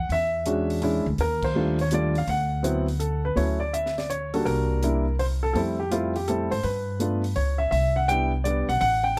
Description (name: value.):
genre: jazz piano trio.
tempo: 165 BPM.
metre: 3/4.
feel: swing 66% on 8ths.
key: unclear.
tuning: A4 = 440 Hz.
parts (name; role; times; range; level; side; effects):
warm upright piano; melody; 0.0-9.2 s; F#3 to G5; -27 LUFS; equal; none.
upright bass; bass; 0.0-9.2 s; A1 to G#2; -29 LUFS; equal; none.
compact cocktail drum kit; drums; 0.1-8.9 s; crash cymbal, hi-hat, kick drum, snare drum; -41 LUFS; equal; none.
room: light reverb.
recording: dark, warm production.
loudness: -25 LUFS.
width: mono.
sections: 0.0-3.4 A section; 3.4-9.2 B section.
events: band accent 1.4.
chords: 0.1 E13; 1.2 Ebmaj9#11; 2.3 D6; 4.5 C7(no3); 5.5 Fmaj7; 6.6 G; 7.7 Cmaj9.